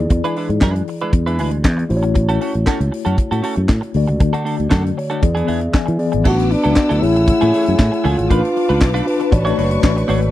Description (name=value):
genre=disco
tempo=117 BPM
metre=4/4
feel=straight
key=unclear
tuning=A4 = 445 Hz
part: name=mellow tine electric piano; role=accompaniment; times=0.0-10.3 s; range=D3 to G#5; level=-21 LUFS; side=left 4 dB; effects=medium stereo tremolo
part: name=semi-hollow electric guitar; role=accompaniment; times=0.0-10.3 s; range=E3 to C#5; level=-24 LUFS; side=right 4 dB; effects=analog chorus
part: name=fingered electric bass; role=bass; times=0.0-10.3 s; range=F#1 to E3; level=-18 LUFS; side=equal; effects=none
part: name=tight funk drum kit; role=drums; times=0.1-10.3 s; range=crash cymbal, handclaps, hi-hat, kick drum, snare drum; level=-16 LUFS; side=equal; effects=none
part: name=dark trombone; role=melody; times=6.3-9.1 s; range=D4 to F#4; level=-17 LUFS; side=equal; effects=none
part: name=warm studio string section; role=sustained chords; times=6.3-10.3 s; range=A3 to E6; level=-26 LUFS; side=left 2 dB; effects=none
room=small room ambience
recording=dry, close 1970s-style studio recording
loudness=-14 LUFS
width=side -14 dB against mid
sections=0.0-6.3 A section; 6.3-10.3 B section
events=tine electric piano fill 4.7-6.3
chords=0.0 E7; 1.9 A6; 4.0 D; 5.2 E7; 6.3 D69/A; 7.0 F#m9/A; 8.3 Dm6/A; 9.3 Bm9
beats=| 0.10 0.62 1.13 1.64 | 2.15 2.67 3.18 3.69 | 4.21 4.72 5.23 5.74 | 6.26 6.77 7.28 7.79 | 8.30 8.81 9.33 9.84